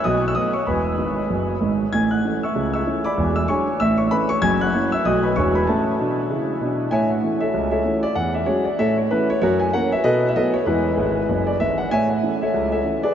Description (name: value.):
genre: jazz, stride piano.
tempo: 192 BPM.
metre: 4/4.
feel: swing 60% on 8ths.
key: A major.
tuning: A4 = 440 Hz.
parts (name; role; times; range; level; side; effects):
warm concert grand piano; solo; 0.0-13.1 s; E1 to G#6; -18 LUFS; equal; none.
room: wet huge ambient reverb, RT60 7.2 s.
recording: in a vast, echoing space, nothing above 7.7 kHz.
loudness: -18 LUFS.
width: side -9 dB against mid.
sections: 0.0-6.9 A section; 6.9-13.1 A section.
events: grand piano fill 1.0-1.9, 11.0-11.9.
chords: 0.0 B7; 0.7 E; 1.9 A; 2.5 A/C#; 3.2 E13; 3.8 A; 4.4 F#7; 5.0 B7; 5.4 E9; 5.7 A; 7.5 A/C#; 8.2 E69; 8.8 A; 9.4 F#7; 10.0 B5; 10.7 E; 11.9 A; 12.5 A/C#.